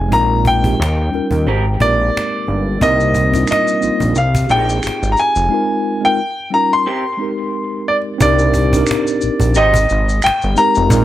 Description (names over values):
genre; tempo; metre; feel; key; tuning
R&B, neo-soul; 89 BPM; 4/4; swing 56% on 16ths; unclear; A4 = 439 Hz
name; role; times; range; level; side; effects
clear baby grand piano; melody; 0.0-11.0 s; D5 to C6; -16 LUFS; equal; plate reverb
mellow tine electric piano; accompaniment; 0.0-11.0 s; G3 to Bb4; -19 LUFS; equal; medium stereo tremolo, plate reverb
fat analog bass; bass; 0.0-11.0 s; F1 to Eb2; -16 LUFS; equal; none
cajon; drums; 0.1-11.0 s; none; -22 LUFS; equal; none
electric guitar through a small old amp; second line; 1.5-9.7 s; Ab3 to C5; -24 LUFS; right 2 dB; wide subtle chorus, plate reverb, tape echo
maracas and finger snaps; percussion; 2.8-11.0 s; none; -28 LUFS; left 1 dB; none
room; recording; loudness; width
light reverb; none; -13 LUFS; side -13 dB against mid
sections
0.0-8.2 A section; 8.2-11.0 B section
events
break 5.5-8.2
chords
0.1 Bb9sus4; 0.8 Eb9; 1.5 Abmaj9; 2.8 Cm9; 4.2 Fm9; 5.5 Bb9sus4; 6.2 Eb9; 6.9 Abmaj9; 8.2 Cm9; 9.6 Abmaj7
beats
| 0.11 0.79 1.46 2.14 | 2.81 3.48 4.16 4.83 | 5.51 6.18 6.86 7.53 | 8.20 8.88 9.55 10.23 | 10.90